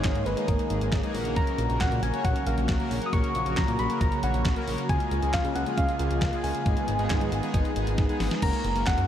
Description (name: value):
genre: synth-pop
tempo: 136 BPM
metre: 4/4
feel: straight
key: unclear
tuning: A4 = 439 Hz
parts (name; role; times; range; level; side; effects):
- soft struck synth lead; melody; 0.0-9.1 s; A#4 to D#6; -31 LUFS; left 1 dB; chorus, tape echo
- analog synth brass; accompaniment; 0.0-9.1 s; G#3 to C#5; -32 LUFS; left 2 dB; chorus
- warm analog pad; sustained chords; 0.0-8.4 s; C#3 to G#4; -33 LUFS; right 2 dB; wide subtle chorus
- chorused synth bass; bass; 0.0-9.1 s; F#1 to C#3; -29 LUFS; equal; none
- detuned 8-bit digital drum machine; drums; 0.0-9.1 s; crash cymbal, handclaps, hi-hat, kick drum, snare drum; -28 LUFS; equal; none
room: moderate huge ambient reverb, RT60 7.8 s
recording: dreamy mix soaked in reverb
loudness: -24 LUFS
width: side -10 dB against mid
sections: 0.0-8.4 A section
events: drum fill 8.0-8.4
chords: 0.0 G#sus2; 1.1 F#/A#; 4.9 C#6; 6.7 G#m; 8.4 F#